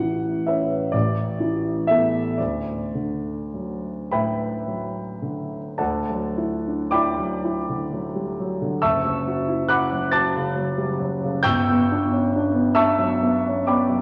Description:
classical, impressionist solo piano; 33-47 BPM (dotted quarters); 6/8; rubato; D major; A4 = 441 Hz
warm grand piano; solo; 0.0-14.0 s; F#1 to A6; -23 LUFS; equal
wet scoring stage reverb, RT60 1.8 s; worn, warbling old tape, cassette tape, warbly pitch drift, small room ambience; -23 LUFS; mono
0.0-5.8 A section; 5.8-14.0 A section
0.0 Aadd9; 0.9 Asus24; 2.4 D6; 8.8 F#m7; 11.4 Gmaj9
0.94 | 2.39 4.12 | 5.79 7.43 | 8.80 10.11 | 11.44 12.74

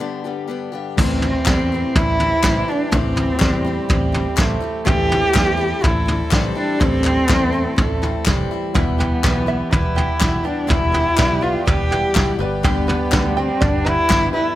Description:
indie folk with a building arrangement; 123 BPM; 4/4; straight; A minor; A4 = 442 Hz
dark cello; melody; 0.0-14.6 s; B3 to G4; -20 LUFS; equal
fingerpicked acoustic archtop guitar; accompaniment; 0.0-2.7 s; G2 to G4; -32 LUFS; left 4 dB
picked old ladder-braced acoustic guitar; accompaniment; 0.0-14.6 s; E2 to G4; -28 LUFS; left 9 dB
mellow French horn; second line; 1.0-14.6 s; E3 to A3; -27 LUFS; right 5 dB
dark concert grand piano; accompaniment; 1.0-14.6 s; G1 to E5; -32 LUFS; left 8 dB
warm brass ensemble; sustained chords; 1.0-14.6 s; D3 to A4; -33 LUFS; equal
fingered electric bass; bass; 1.0-14.3 s; E1 to E2; -24 LUFS; equal
soft brush drum kit; drums; 1.0-14.2 s; crash cymbal, kick drum, snare drum, toms; -19 LUFS; equal
group handclap; percussion; 1.5-14.2 s; -25 LUFS; left 6 dB
open-back banjo; arpeggios; 8.7-14.6 s; E4 to G5; -28 LUFS; right 6 dB
little or no reverb; -16 LUFS; side -14 dB against mid
1.0-14.6 A section
break 0.0-1.0
0.0 G; 1.0 Am7; 8.8 Em; 12.4 G
0.00 0.49 | 0.97 1.46 1.95 2.43 | 2.92 3.40 3.89 4.38 | 4.86 5.35 5.83 6.32 | 6.81 7.29 7.78 8.27 | 8.75 9.24 9.72 10.21 | 10.70 11.18 11.67 12.16 | 12.64 13.13 13.61 14.10

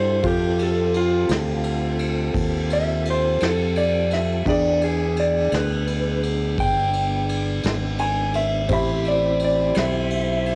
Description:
slow blues; 57 BPM (dotted quarters); 12/8; straight; A4 = 440 Hz
electric guitar through a small old amp; melody; 0.0-10.6 s; F4 to G5; -25 LUFS; equal; cassette tape
warm baby grand piano; accompaniment; 0.0-10.6 s; C4 to B5; -30 LUFS; equal; cassette tape, plate reverb
mellow tonewheel organ; sustained chords; 0.0-10.6 s; B3 to C5; -31 LUFS; equal; slow rotary speaker, cassette tape
fingered electric bass; bass; 0.0-10.6 s; G1 to G2; -27 LUFS; equal
vintage brush drum kit; drums; 0.2-10.6 s; kick drum, ride cymbal, snare drum; -31 LUFS; equal
moderate small room reverb, RT60 0.5 s; home recording on cassette; -22 LUFS; mono
0.0-10.6 A section
clean electric guitar solo 0.0-10.6; grand piano fill 7.6-8.7
0.2 F7; 4.5 E7#9; 8.7 Am7
| 0.24 1.30 2.36 3.41 | 4.47 5.53 6.59 7.64 | 8.70 9.76

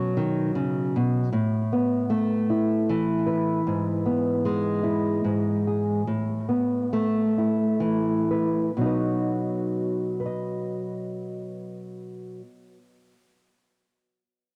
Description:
folk, solo fingerstyle acoustic guitar; 41-52 BPM (dotted quarters); 6/8; straight; B mixolydian; A4 = 440 Hz
nylon-string guitar; solo; 0.0-13.2 s; G#2 to D#5; -25 LUFS; equal; cassette tape, tape echo
light reverb, studio reverb; home recording on cassette; -25 LUFS; mono
0.0-8.8 A section; 8.8-11.6 B section
slowing down 3.7-8.8
0.0 B; 1.3 Asus2; 3.7 E/G#; 6.1 Asus2; 8.8 B
0.17 | 1.34 2.50 | 3.66 4.84 | 6.06 7.35 | 8.75 10.20

